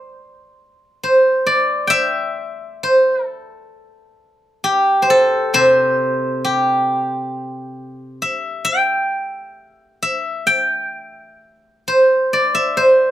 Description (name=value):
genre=chinese traditional, Chinese solo plucked strings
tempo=66 BPM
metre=4/4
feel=rubato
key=C gong mode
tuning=A4 = 439 Hz
part: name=steel-string zither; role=solo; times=0.0-13.1 s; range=C3 to G5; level=-14 LUFS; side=equal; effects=none
room=light reverb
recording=none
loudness=-14 LUFS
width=side -12 dB against mid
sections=0.1-13.1 A section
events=none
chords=none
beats=| 0.09 1.01 1.94 2.85 | 3.75 4.65 5.54 6.43 | 7.32 8.21 9.11 10.02 | 10.94 11.86 12.78